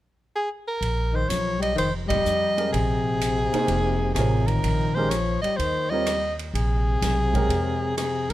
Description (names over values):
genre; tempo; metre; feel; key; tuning
modal jazz; 126 BPM; 4/4; swing 68% on 8ths; Bb dorian; A4 = 438 Hz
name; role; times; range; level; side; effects
clear soprano saxophone; melody; 0.4-8.3 s; Ab4 to Eb5; -26 LUFS; equal; none
upright bass; bass; 0.8-8.3 s; F1 to F2; -26 LUFS; equal; none
swinging big-band drum kit; drums; 0.8-8.3 s; hi-hat, kick drum, ride cymbal, rim click, snare drum; -34 LUFS; right 2 dB; none
breathy tenor saxophone; second line; 1.1-8.3 s; C3 to G3; -28 LUFS; left 4 dB; none
warm grand piano; accompaniment; 2.6-7.9 s; C3 to G5; -29 LUFS; right 4 dB; none
room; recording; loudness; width
light reverb; none; -21 LUFS; side -15 dB against mid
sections
0.8-8.3 A section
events
band accent 2.0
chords
0.0 N.C.; 0.8 Bb9sus4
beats
0.34 | 0.82 1.30 1.77 2.25 | 2.73 3.20 3.68 4.16 | 4.63 5.11 5.59 6.06 | 6.54 7.01 7.49 7.97